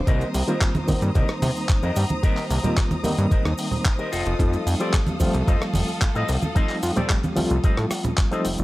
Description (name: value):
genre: nu-disco, nu disco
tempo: 111 BPM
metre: 4/4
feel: straight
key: C dorian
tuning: A4 = 439 Hz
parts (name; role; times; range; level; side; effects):
- barky reed electric piano; accompaniment; 0.0-8.6 s; Eb3 to G4; -27 LUFS; equal; overdrive, fast tremolo, vintage 12-bit sampler grit, sidechain pumping, tape echo
- warm studio violin section; sustained chords; 0.0-8.6 s; A4 to Eb6; -33 LUFS; equal; sidechain pumping
- fat analog bass; bass; 0.0-8.6 s; F1 to C3; -23 LUFS; equal; none
- electric guitar with an envelope filter; riff; 0.1-8.6 s; F4 to Eb5; -31 LUFS; left 2 dB; lush chorus, tape echo
- dusty soul sampler-style drum kit; drums; 0.1-8.6 s; handclaps, hi-hat, rim click; -30 LUFS; equal; none
- electronic kick drum; drums; 0.1-8.3 s; none; -20 LUFS; equal; none
- cabasa and congas; percussion; 0.1-8.6 s; none; -28 LUFS; right 2 dB; none
room: little or no reverb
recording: none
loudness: -20 LUFS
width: side -18 dB against mid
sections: 0.0-8.6 A section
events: none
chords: 0.1 Cm7; 4.1 F7